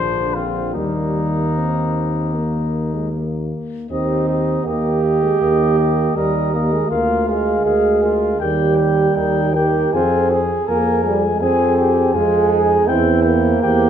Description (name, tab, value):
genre	classical, brass quintet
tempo	74-82 BPM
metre	4/4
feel	rubato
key	Eb major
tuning	A4 = 440 Hz
part	mellow trumpet	melody	0.0-13.9 s	Eb4 to Ab5	-24 LUFS	left 8 dB	none
part	warm flugelhorn	second line	0.0-13.9 s	Bb3 to Bb4	-23 LUFS	right 6 dB	none
part	warm French horn	accompaniment	0.0-13.9 s	F3 to C5	-25 LUFS	left 3 dB	none
part	warm trombone	accompaniment	0.0-13.9 s	D3 to C4	-20 LUFS	right 3 dB	none
part	warm bass trombone	bass	0.0-13.9 s	Bb1 to F2	-20 LUFS	right 1 dB	none
room	wet recital hall reverb, RT60 1.7 s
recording	minimal, uncompressed stereo recording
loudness	-15 LUFS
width	side -9 dB against mid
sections	0.0-3.9 A section; 3.9-13.9 A section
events	none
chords	0.0 Bb; 0.7 Eb; 6.9 Bb7/D; 8.4 Eb; 9.9 Fm; 12.9 C7/E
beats	| 0.74 1.55 2.34 3.13 | 3.90 4.66 5.41 6.16 | 6.92 7.66 8.41 9.16 | 9.94 10.69 11.42 12.15 | 12.88 13.62